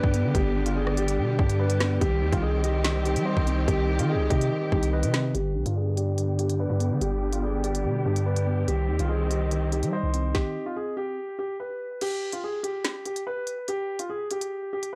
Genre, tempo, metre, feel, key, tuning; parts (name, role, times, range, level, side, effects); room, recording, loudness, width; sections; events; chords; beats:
hip hop, drill; 144 BPM; 4/4; half-time; C harmonic minor; A4 = 440 Hz
dark baby grand piano; melody; 0.0-15.0 s; F4 to C5; -32 LUFS; equal; low-pass filter, tape echo
mellow tine electric piano; accompaniment; 0.0-11.2 s; D3 to Eb5; -33 LUFS; equal; low-pass filter
warm symphonic string section; sustained chords; 0.0-10.3 s; D3 to G4; -36 LUFS; equal; low-pass filter
long sustained 808-style bass; bass; 0.0-10.3 s; G1 to G3; -29 LUFS; equal
drill drum kit; drums; 0.0-14.9 s; crash cymbal, hi-hat, kick drum, rim click, snare drum; -31 LUFS; equal
little or no reverb; dry, gritty hardware recording, transformer saturation, cassette tape; -26 LUFS; mono
0.0-5.3 A section; 5.3-12.0 B section; 12.0-15.0 C section
filter sweep 5.3-12.0; stop 10.3-12.0; break 12.0-15.0
0.0 G; 2.0 Cm; 5.3 G; 8.7 Cm; 12.0 N.C.
| 0.35 0.76 1.18 1.60 | 2.01 2.43 2.85 3.26 | 3.68 4.10 4.51 4.93 | 5.35 5.76 6.18 6.60 | 7.01 7.43 7.85 8.26 | 8.68 9.10 9.51 9.93 | 10.35 10.76 11.18 11.60 | 12.01 12.43 12.85 13.26 | 13.68 14.10 14.51 14.93